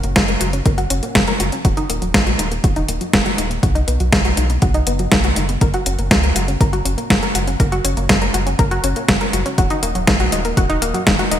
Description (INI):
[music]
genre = italo disco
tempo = 121 BPM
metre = 4/4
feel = straight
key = F# major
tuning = A4 = 440 Hz
[part]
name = analog pluck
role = arpeggios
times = 0.0-11.4 s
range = D#3 to A#4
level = -22 LUFS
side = left 2 dB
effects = chorus, cassette tape, ping-pong delay
[part]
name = round analog bass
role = bass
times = 0.0-11.4 s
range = D#1 to C#2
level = -21 LUFS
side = equal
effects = none
[part]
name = clean 12-bit digital drum machine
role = drums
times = 0.0-11.4 s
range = hi-hat, snare drum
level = -18 LUFS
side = equal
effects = overdrive, gated reverb
[part]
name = electronic kick drum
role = drums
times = 0.2-11.2 s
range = none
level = -19 LUFS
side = equal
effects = none
[sound]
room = moderate lush hall reverb, RT60 2.2 s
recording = bright 1980s-style digital production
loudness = -14 LUFS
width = side -10 dB against mid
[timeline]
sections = 0.0-11.4 A section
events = filter sweep on synth arpeggio sound 0.0-11.4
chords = 0.0 F#; 1.6 D#m; 3.6 B; 5.6 F#; 9.6 D#m